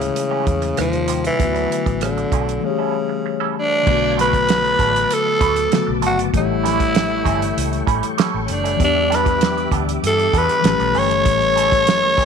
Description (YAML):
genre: lush 1970s-style soul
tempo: 97 BPM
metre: 4/4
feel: straight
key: unclear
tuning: A4 = 438 Hz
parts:
  - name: growling tenor saxophone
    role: melody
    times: 0.0-12.2 s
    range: C#3 to C#5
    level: -18 LUFS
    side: equal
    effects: none
  - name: tine electric piano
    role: accompaniment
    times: 0.0-12.2 s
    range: C3 to C#5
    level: -23 LUFS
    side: left 13 dB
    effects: medium stereo tremolo
  - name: semi-hollow electric guitar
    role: riff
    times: 0.0-12.2 s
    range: Eb3 to B4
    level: -27 LUFS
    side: right 14 dB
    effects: wah, vibrato effect
  - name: vintage muted fingered electric bass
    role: bass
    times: 0.0-12.1 s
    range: F#1 to G2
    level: -25 LUFS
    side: right 1 dB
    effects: none
  - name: warm soul drum kit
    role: drums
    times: 0.0-12.2 s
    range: crash cymbal, hi-hat, kick drum, rim click, snare drum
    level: -22 LUFS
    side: right 4 dB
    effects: none
  - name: tonewheel organ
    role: sustained chords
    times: 3.9-12.2 s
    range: G4 to D6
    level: -30 LUFS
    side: right 1 dB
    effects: overdrive, chorus vibrato, slow rotary speaker
room: light reverb, small room reverb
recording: 1960s-style stereo with parts hard left and right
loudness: -15 LUFS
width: side -6 dB against mid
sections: 0.0-3.9 A section; 3.9-12.2 B section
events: none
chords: 0.0 A7; 0.8 Eb6; 1.4 D6; 2.6 A7; 3.9 Bm7; 6.3 A7; 8.8 Em7; 10.6 A7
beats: 0.17 0.79 | 1.40 2.02 2.64 3.25 | 3.87 4.49 5.11 5.72 | 6.34 6.96 7.57 8.19 | 8.80 9.42 10.03 10.65 | 11.26 11.88